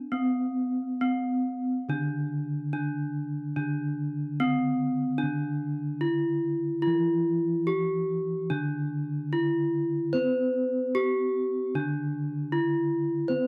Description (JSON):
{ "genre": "gamelan", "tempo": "66-80 BPM", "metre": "4/4", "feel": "straight", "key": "unclear", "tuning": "A4 = 440 Hz", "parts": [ { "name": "gamelan-type bronze metallophone", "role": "melody", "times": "0.0-13.5 s", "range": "C4-45c to C5-45c", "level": "-30 LUFS", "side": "equal", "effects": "none" }, { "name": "gamelan-type bronze metallophone", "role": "accompaniment", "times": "0.0-13.5 s", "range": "D3 to C4-45c", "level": "-33 LUFS", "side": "equal", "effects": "none" } ], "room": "light reverb", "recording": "dry, close 1970s-style studio recording", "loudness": "-28 LUFS", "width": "mono", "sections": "0.0-3.6 A section; 3.6-13.5 B section", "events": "none", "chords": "none", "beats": "| 0.12 1.02 1.89 2.74 | 3.57 4.39 5.21 6.04 | 6.86 7.68 8.50 9.32 | 10.14 10.96 11.75 12.53 | 13.29" }